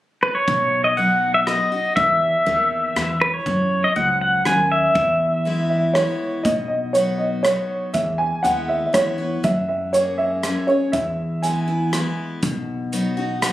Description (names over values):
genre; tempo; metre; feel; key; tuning
honky-tonk and classic country; 120 BPM; 3/4; straight; E major; A4 = 440 Hz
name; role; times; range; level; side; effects
pedal steel guitar; melody; 0.2-5.9 s; B4 to G#5; -18 LUFS; equal; none
picked steel-string acoustic guitar; accompaniment; 0.5-13.5 s; E2 to G#4; -26 LUFS; left 2 dB; none
upright bass; bass; 0.5-13.5 s; B1 to F#2; -26 LUFS; equal; none
natural country drum kit; drums; 0.5-13.5 s; hi-hat, kick drum, rim click; -27 LUFS; equal; none
dark upright piano; second line; 5.7-12.1 s; C#5 to G#5; -21 LUFS; right 1 dB; none
room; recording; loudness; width
moderate studio reverb, RT60 0.7 s; recorded on a phone in the room, club reverb; -18 LUFS; side -14 dB against mid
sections
0.5-6.4 A section; 6.4-13.5 B section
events
upright piano solo 6.4-13.5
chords
0.5 B; 2.0 C#madd9 (rootless); 3.5 F#sus2; 5.0 E; 6.4 B; 7.9 E; 9.4 F#add9; 10.9 E; 12.4 B